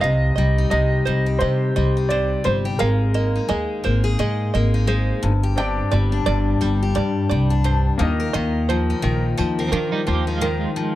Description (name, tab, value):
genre	acoustic pop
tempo	86 BPM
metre	4/4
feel	swing 60% on 16ths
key	C minor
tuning	A4 = 440 Hz
part	warm upright piano	melody	0.0-4.5 s	Ab4 to Eb5	-25 LUFS	right 1 dB	digital delay
part	picked steel-string acoustic guitar	accompaniment	0.0-11.0 s	G2 to B4	-23 LUFS	left 4 dB	none
part	open-back banjo	arpeggios	0.0-10.9 s	Bb4 to G5	-29 LUFS	right 8 dB	none
part	upright bass	bass	0.0-10.7 s	G1 to Eb3	-20 LUFS	equal	none
part	bright concert grand piano	accompaniment	5.6-11.0 s	Bb3 to Eb5	-31 LUFS	left 4 dB	none
part	twelve-string electric guitar	second line	9.6-11.0 s	Eb3 to G4	-25 LUFS	right 5 dB	tremolo
room	small room ambience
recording	dark, warm production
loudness	-18 LUFS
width	side -14 dB against mid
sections	0.0-11.0 A section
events	none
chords	0.0 Cm; 2.8 Absus2; 5.2 Gsus4; 8.0 Ebsus2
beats	| 0.03 0.72 1.42 2.11 | 2.81 3.50 4.20 4.89 | 5.58 6.28 6.97 7.66 | 8.35 9.05 9.74 10.43